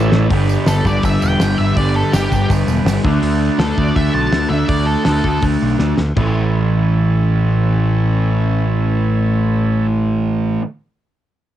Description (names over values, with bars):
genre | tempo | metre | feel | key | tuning
garage rock duo or trio | 163 BPM | 4/4 | straight | A mixolydian | A4 = 439 Hz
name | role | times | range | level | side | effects
combo organ | sustained chords | 0.0-9.9 s | C#4 to E5 | -27 LUFS | right 8 dB | cassette tape
fuzz guitar | riff | 0.0-10.6 s | G2 to D4 | -17 LUFS | equal | distortion, cassette tape
growling picked electric bass | bass | 0.0-10.6 s | E1 to D2 | -17 LUFS | equal | overdrive
cloth-damped thuddy drum kit | drums | 0.1-6.3 s | crash cymbal, hi-hat, kick drum, snare drum, toms | -21 LUFS | equal | cassette tape
tambourine | percussion | 0.5-3.0 s | none | -35 LUFS | right 10 dB | none
octave-fuzz lead guitar | melody | 0.7-5.4 s | G4 to A5 | -21 LUFS | left 1 dB | distortion, cassette tape
room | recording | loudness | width
little or no reverb | home recording on cassette | -13 LUFS | side -12 dB against mid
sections
0.3-6.2 A section; 6.2-9.1 B section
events
transistor combo organ fill 0.0; drum fill 0.0, 5.8-6.2; lead electric guitar solo 0.3-6.2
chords
0.3 G; 3.0 D; 6.2 A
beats
| 0.30 0.66 1.02 1.39 | 1.76 2.12 2.49 2.86 | 3.22 3.59 3.96 4.33 | 4.69 5.06 5.43 5.80 | 6.16 6.53 6.90 7.27 | 7.63 8.00 8.37 8.74